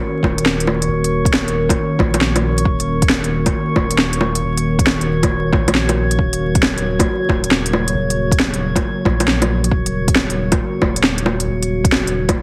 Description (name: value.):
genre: future garage.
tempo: 136 BPM.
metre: 4/4.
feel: swing 66% on 16ths.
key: Eb minor.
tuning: A4 = 440 Hz.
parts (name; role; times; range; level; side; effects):
warbly tape-like pad; sustained chords; 0.0-12.4 s; Db3 to Bb4; -24 LUFS; equal; chorus, built-in reverb, sidechain pumping.
drifting glass-harmonics texture; texture; 0.0-12.4 s; Db5; -29 LUFS; equal; chorus, built-in reverb.
warm sub bass; bass; 0.2-12.4 s; Eb1 to Bb1; -24 LUFS; equal; tube saturation, sidechain pumping.
electronic kick drum; drums; 0.2-12.3 s; none; -21 LUFS; equal; none.
organic electronic drum kit; drums; 0.2-12.3 s; bongos, hi-hat, snare drum; -20 LUFS; equal; overdrive.
room: light reverb.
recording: heavily compressed radio sound, vinyl crackle.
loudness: -17 LUFS.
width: mono.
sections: 0.0-12.4 A section.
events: none.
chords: 0.0 Ebm7.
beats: 0.01 0.45 | 0.89 1.33 1.78 2.22 | 2.66 3.10 3.54 3.98 | 4.42 4.86 5.30 5.75 | 6.19 6.63 7.07 7.51 | 7.95 8.39 8.84 9.28 | 9.72 10.16 10.60 11.04 | 11.48 11.92 12.36.